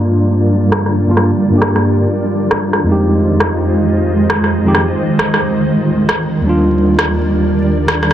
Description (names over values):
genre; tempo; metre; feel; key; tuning
future garage; 134 BPM; 4/4; swing 64% on 16ths; F dorian; A4 = 441 Hz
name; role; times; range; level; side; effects
tine electric piano; accompaniment; 0.0-8.1 s; Eb2 to G4; -14 LUFS; equal; medium tremolo, digital delay
granular cloud pad; sustained chords; 0.0-8.1 s; Eb3 to Eb5; -16 LUFS; equal; built-in reverb
electronic rim click; drums; 0.7-8.1 s; none; -17 LUFS; equal; soft clipping on snare, low-pass filter on snare, low-pass filter on room
room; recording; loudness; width
moderate huge ambient reverb, RT60 3.8 s; dense, heavily limited modern master, vinyl crackle, low-pass filter; -11 LUFS; side -11 dB against mid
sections
0.0-8.1 A section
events
filter sweep on drum 0.0-8.1; filter sweep 0.0-8.1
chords
0.0 Gm7; 2.1 Fm7; 5.6 Ebmaj7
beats
| 0.27 0.72 1.17 1.62 | 2.06 2.51 2.96 3.41 | 3.85 4.30 4.75 5.20 | 5.65 6.09 6.54 6.99 | 7.44 7.88